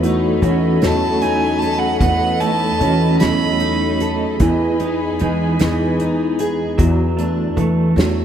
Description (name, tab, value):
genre	acoustic folk-pop ballad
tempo	50 BPM (dotted quarters)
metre	6/8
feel	straight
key	unclear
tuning	A4 = 440 Hz
part	warm French horn	second line	0.0-0.6 s	F#4	-24 LUFS	left 4 dB	none
part	fingerpicked steel-string acoustic guitar	accompaniment	0.0-8.2 s	E2 to A4	-22 LUFS	left 3 dB	analog chorus
part	warm studio string section	sustained chords	0.0-6.8 s	G#4 to B5	-25 LUFS	left 2 dB	none
part	electric guitar through a small old amp	arpeggios	0.0-8.2 s	E3 to A4	-21 LUFS	right 5 dB	tremolo, analog delay
part	upright bass	bass	0.0-8.2 s	E2 to E3	-20 LUFS	equal	none
part	unplugged drum kit	drums	0.0-8.2 s	hi-hat, kick drum, snare drum	-21 LUFS	right 1 dB	none
part	clear violin	melody	0.8-4.1 s	F#5 to B5	-21 LUFS	right 2 dB	analog delay
room	moderate plate reverb, RT60 2.4 s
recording	dreamy mix soaked in reverb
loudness	-15 LUFS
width	side -9 dB against mid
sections	0.0-8.2 A section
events	none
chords	0.0 B9/E; 4.4 Emaj7; 6.8 D/E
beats	0.82 | 2.00 3.20 | 4.40 5.60 | 6.79 7.97